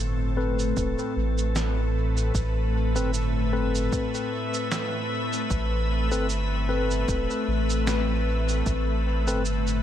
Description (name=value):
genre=ambient dub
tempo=76 BPM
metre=4/4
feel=swing 55% on 16ths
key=A minor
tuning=A4 = 440 Hz
part: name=soft additive organ-like pad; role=sustained chords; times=0.0-9.8 s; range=A2 to E5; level=-29 LUFS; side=left 1 dB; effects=ensemble chorus, built-in reverb
part: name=soft dub sub bass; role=bass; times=0.0-9.8 s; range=E1 to A1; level=-26 LUFS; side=equal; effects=none
part: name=tine electric piano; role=stabs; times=0.4-9.4 s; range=C4 to B4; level=-30 LUFS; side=left 3 dB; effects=medium tremolo, dub echo
part: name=electronic cabasa and snare drum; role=drums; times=0.6-9.8 s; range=none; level=-34 LUFS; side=right 2 dB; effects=dub echo
part: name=electronic kick drum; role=drums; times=0.8-8.8 s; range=none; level=-31 LUFS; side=equal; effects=overdrive
room=little or no reverb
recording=none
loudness=-23 LUFS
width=side -11 dB against mid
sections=0.0-9.8 A section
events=none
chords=0.0 Amadd9